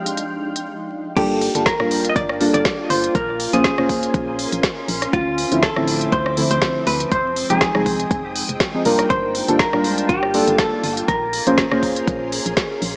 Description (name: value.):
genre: deep house.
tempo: 121 BPM.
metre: 4/4.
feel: swing 55% on 16ths.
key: G minor.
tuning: A4 = 439 Hz.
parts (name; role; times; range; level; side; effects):
soft string machine; sustained chords; 0.0-13.0 s; Ab3 to Eb6; -36 LUFS; equal; ensemble chorus, sidechain pumping.
deep mellow chord stab; stabs; 0.0-13.0 s; D3 to C5; -23 LUFS; equal; chorus, phaser, sidechain pumping, digital delay.
analog string pad; texture; 0.0-0.7 s; G5 to F6; -36 LUFS; equal; ensemble chorus, sidechain pumping.
granular cloud pad; texture; 0.0-13.0 s; F3 to E6; -32 LUFS; equal; built-in reverb, sidechain pumping.
deep house drum kit; drums; 0.1-12.9 s; crash cymbal, hi-hat, rim click, snare drum; -25 LUFS; equal; none.
vintage hollow-body jazz guitar; melody; 1.2-11.8 s; F4 to Eb5; -25 LUFS; equal; digital delay.
organ-like FM bass; bass; 1.2-13.0 s; D1 to D2; -33 LUFS; equal; none.
electronic kick drum; drums; 1.2-12.7 s; none; -26 LUFS; equal; none.
room: light reverb.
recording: vinyl crackle, small speaker sound.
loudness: -19 LUFS.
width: mono.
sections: 0.0-1.2 A section; 1.2-13.0 B section.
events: stop 0.7-1.2; drop 1.2-13.0.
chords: 0.0 Fm9; 1.2 Gm9; 3.1 Bbm9; 5.1 Dm9; 7.1 Fm9; 9.1 Gm9; 11.1 Bbm9.